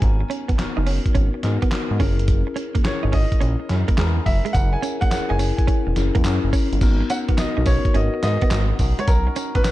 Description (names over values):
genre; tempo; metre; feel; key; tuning
R&B, new jack swing; 106 BPM; 4/4; swing 67% on 16ths; G# minor; A4 = 441 Hz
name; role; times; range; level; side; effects
warm grand piano; melody; 0.0-9.7 s; A#4 to G#5; -28 LUFS; equal; none
mellow tine electric piano; accompaniment; 0.0-9.7 s; B3 to A#4; -27 LUFS; left 6 dB; phaser
fat analog bass; bass; 0.0-9.7 s; E1 to G#2; -21 LUFS; equal; none
dusty soul sampler-style drum kit; drums; 0.0-9.7 s; crash cymbal, handclaps, hi-hat, kick drum, snare drum, tambourine; -21 LUFS; equal; none
direct-recorded clean electric guitar; riff; 0.2-9.7 s; G#3 to D#4; -30 LUFS; right 7 dB; ensemble chorus
room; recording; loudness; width
digital ambience; dark, warm production; -18 LUFS; side -16 dB against mid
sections
0.0-6.8 A section; 6.8-9.7 B section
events
none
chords
0.0 G#m9; 2.0 F#9; 6.8 G#m7; 8.8 Bmaj9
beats
| 0.02 0.59 1.15 1.72 | 2.29 2.85 3.42 3.98 | 4.55 5.12 5.68 6.25 | 6.81 7.38 7.95 8.51 | 9.08 9.64